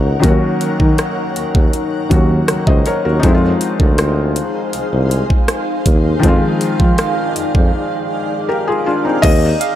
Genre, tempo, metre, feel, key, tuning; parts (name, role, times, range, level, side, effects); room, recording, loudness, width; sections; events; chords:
contemporary R&B; 80 BPM; 4/4; straight; A4 = 441 Hz
felt-muted upright piano; accompaniment; 0.0-9.8 s; Eb3 to Eb5; -18 LUFS; left 2 dB
granular cloud pad; sustained chords; 0.0-9.8 s; Eb3 to Gb5; -22 LUFS; equal; built-in reverb
warm tuba; bass; 0.0-9.5 s; C2 to F3; -16 LUFS; equal
trap drum kit; drums; 0.2-9.8 s; crash cymbal, hi-hat, kick drum, rim click; -15 LUFS; equal
glassy wavetable pluck; texture; 9.6-9.8 s; F5; -18 LUFS; right 10 dB; chorus
digital ambience; dry, gritty hardware recording; -12 LUFS; side -12 dB against mid
0.0-9.2 A section
break 7.7-9.2
0.0 Ebm7; 3.2 Fm7; 9.2 Eb7(no3)